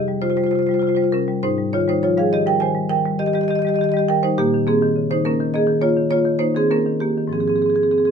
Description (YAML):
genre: classical, contemporary piece for solo marimba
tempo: 101 BPM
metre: 5/4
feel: rubato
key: Ab major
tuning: A4 = 440 Hz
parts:
  - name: marimba with medium hard mallets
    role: solo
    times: 0.0-8.1 s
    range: F2 to Ab5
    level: -16 LUFS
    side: equal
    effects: none
room: moderate studio ambience, RT60 0.5 s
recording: none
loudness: -16 LUFS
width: side -6 dB against mid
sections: 0.0-8.1 A section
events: none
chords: 0.0 Fsus2; 1.4 Abmaj9; 4.4 Bbm11; 7.3 Ab6